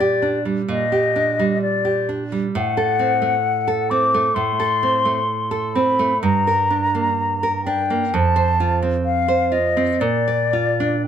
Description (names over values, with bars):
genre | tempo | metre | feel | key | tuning
romantic duo for flute and classical guitar | 54-69 BPM | 4/4 | rubato | G minor | A4 = 440 Hz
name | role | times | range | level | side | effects
mellow silver concert flute | melody | 0.0-11.1 s | D5 to D6 | -19 LUFS | left 4 dB | none
nylon-string guitar | accompaniment | 0.0-11.1 s | F2 to D5 | -20 LUFS | right 4 dB | none
room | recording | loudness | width
light reverb | none | -17 LUFS | side -8 dB against mid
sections
0.0-11.1 A section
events
none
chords
0.0 Gm/Bb; 2.6 F#dim/A; 6.2 Gm; 8.1 F5; 10.0 Bb